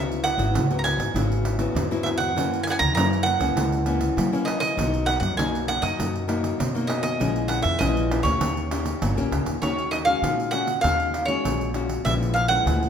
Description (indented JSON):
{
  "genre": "samba and choro",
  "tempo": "99 BPM",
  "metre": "4/4",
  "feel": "straight",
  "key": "Eb minor from 9.6 s",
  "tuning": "A4 = 444 Hz",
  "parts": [
    { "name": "mandolin", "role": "melody", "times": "0.0-12.9 s", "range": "C#5 to A#5", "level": "-25 LUFS", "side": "right 2 dB", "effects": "none" },
    { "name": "nylon-string guitar", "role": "accompaniment", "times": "0.0-12.9 s", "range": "F#2 to G4", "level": "-27 LUFS", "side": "left 4 dB", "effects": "none" },
    { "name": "upright bass", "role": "bass", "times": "0.0-12.9 s", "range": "G1 to F#3", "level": "-26 LUFS", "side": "equal", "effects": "none" },
    { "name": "pandeiro", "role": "percussion", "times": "0.1-12.9 s", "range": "none", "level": "-29 LUFS", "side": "right 2 dB", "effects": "none" }
  ],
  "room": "wet large studio reverb, RT60 1.3 s",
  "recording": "minimal, uncompressed stereo recording",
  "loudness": "-21 LUFS",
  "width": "side -8 dB against mid",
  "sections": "0.0-9.6 A section; 9.6-12.9 B section",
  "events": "none",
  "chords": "0.0 C#m7; 2.4 F#7; 4.8 Bmaj7; 7.2 A#m7b5; 8.4 D#7; 9.6 Ebm7; 12.1 Bbm7b5"
}